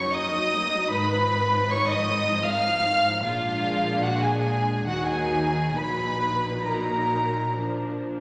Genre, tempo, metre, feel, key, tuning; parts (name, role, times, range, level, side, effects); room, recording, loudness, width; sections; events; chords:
classical, slow romantic movement for string orchestra; 65-79 BPM; 3/4; rubato; Eb minor; A4 = 440 Hz
warm chamber violin section; melody; 0.0-8.0 s; F5 to F6; -29 LUFS; equal
warm chamber violin section; second line; 0.0-8.0 s; F4 to F5; -30 LUFS; equal
dark chamber viola section; accompaniment; 0.0-8.2 s; Eb3 to Eb4; -33 LUFS; equal
dark chamber double bass section; bass; 0.0-8.2 s; Gb1 to Eb2; -34 LUFS; equal
warm chamber cello section; bass; 0.0-8.2 s; Gb2 to Eb3; -35 LUFS; equal
wet scoring stage reverb, RT60 1.8 s; -25 LUFS; mono
0.0-8.2 A section
0.0 Ebm/Gb; 0.9 Fm7b5/Ab; 3.3 Bb7; 4.9 Ebm; 5.8 Ebm/Bb; 7.6 Bb